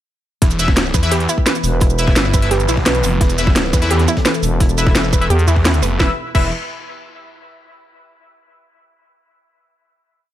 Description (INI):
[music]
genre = dark technical drum and bass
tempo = 172 BPM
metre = 4/4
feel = straight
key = E minor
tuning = A4 = 440 Hz
[part]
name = dark analog pad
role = sustained chords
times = 0.4-6.2 s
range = E3 to B4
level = -24 LUFS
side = equal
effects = chorus, phaser, sidechain pumping
[part]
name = wide unison pluck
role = arpeggios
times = 0.4-6.5 s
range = E4 to B4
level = -24 LUFS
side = right 3 dB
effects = sidechain pumping, dub echo
[part]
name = snarling distorted saw bass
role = bass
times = 0.4-6.5 s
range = E1 to E2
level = -17 LUFS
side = equal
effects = distortion, tube saturation, sidechain pumping
[part]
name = crunchy breakbeat drum kit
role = drums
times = 0.4-5.9 s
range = hi-hat, snare drum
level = -32 LUFS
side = equal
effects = none
[part]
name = drum and bass drum kit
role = drums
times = 0.4-6.4 s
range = crash cymbal, hi-hat, rim click, shaker, snare drum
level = -19 LUFS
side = equal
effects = studio reverb
[part]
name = electronic kick drum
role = drums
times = 0.4-6.4 s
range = none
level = -15 LUFS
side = equal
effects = studio reverb
[part]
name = band-passed chord stab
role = stabs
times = 0.6-6.5 s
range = E4 to E5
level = -24 LUFS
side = left 2 dB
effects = chorus, dub echo
[part]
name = growling FM bass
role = bass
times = 1.6-2.1, 4.4-5.5 s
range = E1 to E2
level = -16 LUFS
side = equal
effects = none
[sound]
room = little or no reverb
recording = none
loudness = -13 LUFS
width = side -12 dB against mid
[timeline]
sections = 0.4-6.0 drop; 6.0-7.4 final chord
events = drop 0.4-6.0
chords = 0.4 E5